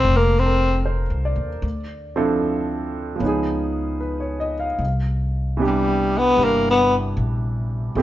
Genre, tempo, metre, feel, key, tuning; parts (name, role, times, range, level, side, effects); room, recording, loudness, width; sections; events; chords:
jazz ballad; 76 BPM; 4/4; swing 66% on 8ths; A4 = 440 Hz
growling tenor saxophone; melody; 0.0-0.8, 5.7-6.9 s; G3 to C4; -18 LUFS; left 2 dB
clear concert grand piano; accompaniment; 0.0-8.0 s; Bb2 to E#5; -24 LUFS; right 2 dB
upright bass; bass; 0.0-8.0 s; F1 to Eb2; -24 LUFS; equal
moderate stone room reverb, RT60 1.0 s; band playing live in one room, nothing above 7.6 kHz; -19 LUFS; side -14 dB against mid
0.0-8.0 A section
tenor saxophone solo 0.0-8.0
0.0 Bbmaj9; 1.6 Dm7; 3.2 C#9; 4.8 Cmaj9